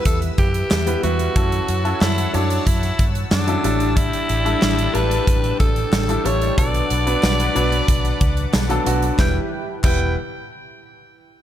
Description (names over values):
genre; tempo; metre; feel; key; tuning
1980s-style pop; 92 BPM; 4/4; straight; E dorian; A4 = 440 Hz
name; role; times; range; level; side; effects
raspy alto saxophone; melody; 0.0-10.1 s; D4 to G5; -24 LUFS; equal; digital delay
clear baby grand piano; accompaniment; 0.0-10.1 s; F#3 to C#5; -24 LUFS; left 1 dB; none
sweeping resonant pad; sustained chords; 0.0-9.5 s; D4 to E6; -30 LUFS; left 1 dB; chorus
vintage muted fingered electric bass; bass; 0.1-10.1 s; E1 to G2; -22 LUFS; equal; none
big rock drum kit; drums; 0.1-10.0 s; crash cymbal, hi-hat, kick drum, snare drum, tambourine; -21 LUFS; equal; none
group handclap; percussion; 0.7-10.1 s; none; -38 LUFS; left 3 dB; none
room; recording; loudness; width
light reverb, small room ambience; none; -16 LUFS; side -11 dB against mid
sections
0.0-9.2 A section; 9.2-11.4 B section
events
none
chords
0.0 Em; 1.4 F#m7; 3.6 A7sus4; 6.6 Bm7; 9.2 Em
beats
0.06 0.71 | 1.36 2.01 2.66 3.32 | 3.97 4.62 5.27 5.92 | 6.58 7.23 7.88 8.53 | 9.19 9.84